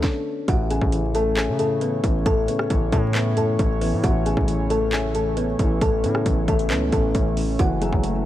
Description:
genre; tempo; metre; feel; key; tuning
hip hop, trap; 135 BPM; 4/4; half-time; A major; A4 = 440 Hz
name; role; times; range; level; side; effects
kalimba; melody; 0.0-8.2 s; B3 to A5; -25 LUFS; left 1 dB; digital delay
dark concert grand piano; accompaniment; 0.0-8.3 s; A2 to D4; -26 LUFS; left 2 dB; none
distorted 808-style bass; bass; 0.0-8.3 s; F#1 to C#3; -25 LUFS; equal; distortion
trap drum kit; drums; 0.0-8.1 s; handclaps, hi-hat, kick drum, rim click, snare drum; -24 LUFS; equal; vintage 12-bit sampler grit
warbly tape-like pad; sustained chords; 0.9-8.3 s; E3 to C#5; -31 LUFS; right 2 dB; chorus, built-in reverb
room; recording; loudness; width
light reverb; vinyl crackle; -19 LUFS; side -13 dB against mid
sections
0.5-8.3 A section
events
stop 0.0-0.5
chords
0.5 A; 7.6 F#m7

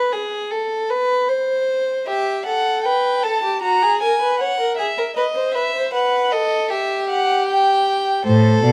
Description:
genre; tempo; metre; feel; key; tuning
classical, baroque-style fugue for string quartet; 78 BPM; 4/4; straight; unclear; A4 = 440 Hz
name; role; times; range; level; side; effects
rich violin; second line; 0.0-8.7 s; F#4 to C#5; -22 LUFS; equal; none
warm violin; melody; 2.1-8.7 s; C5 to A#5; -22 LUFS; equal; none
warm cello; bass; 8.3-8.7 s; A2 to B2; -15 LUFS; equal; none
room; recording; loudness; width
light reverb; dark, warm production; -19 LUFS; mono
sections
0.0-8.7 A section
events
none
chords
0.0 N.C.; 2.1 Em/G; 3.6 F#7; 5.2 B; 6.7 Em/G

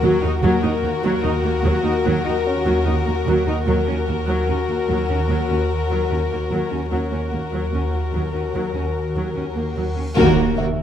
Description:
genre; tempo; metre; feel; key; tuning
cinematic, suspense film score; 74 BPM; 4/4; straight; unclear; A4 = 439 Hz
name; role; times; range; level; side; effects
warm chamber violin section; melody; 0.0-10.7 s; Bb4; -26 LUFS; left 7 dB; none
warm chamber violin section; second line; 0.0-10.7 s; Gb4; -25 LUFS; left 5 dB; none
rich studio viola section; accompaniment; 0.0-10.6 s; Gb3 to Eb4; -25 LUFS; right 2 dB; none
dark chamber double bass section; bass; 0.0-10.7 s; Eb2; -25 LUFS; right 4 dB; none
warm chamber cello section; bass; 0.0-10.7 s; Eb2; -27 LUFS; right 3 dB; none
swarming drone; drone; 0.0-10.8 s; Eb2; -25 LUFS; right 1 dB; built-in reverb
felt-muted upright piano; texture; 0.0-10.8 s; Bb3 to Fb5; -31 LUFS; left 1 dB; none
reverse cymbal and impact; sound effects; 9.9-10.8 s; none; -29 LUFS; equal; none
timpani; percussion; 10.2-10.8 s; Eb3; -24 LUFS; left 1 dB; none
room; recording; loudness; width
light reverb; dark, warm production; -18 LUFS; side -9 dB against mid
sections
0.0-10.2 A section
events
reverse cymbal 9.9; band accent 10.2-10.8; impact 10.2-10.8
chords
0.0 Gb6/Eb; 10.2 Ebm

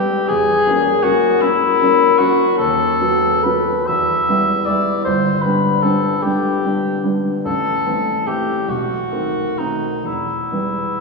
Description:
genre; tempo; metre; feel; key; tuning
classical, romantic duo for cor anglais and grand piano; 42-53 BPM (dotted quarters); 6/8; rubato; E minor; A4 = 440 Hz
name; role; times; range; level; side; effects
mellow cor anglais; melody; 0.0-11.0 s; D#4 to E5; -17 LUFS; left 2 dB; none
warm grand piano; accompaniment; 0.0-11.0 s; G1 to F#4; -18 LUFS; left 1 dB; none
room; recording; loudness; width
wet church reverb, RT60 3.0 s; recorded in a church or concert hall, studio ambience; -15 LUFS; side -2 dB against mid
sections
0.0-11.0 A section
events
none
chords
0.3 F#7/E; 2.6 B7/D#; 3.9 Em; 5.1 G; 7.5 Am; 8.7 B7b9; 10.0 Em

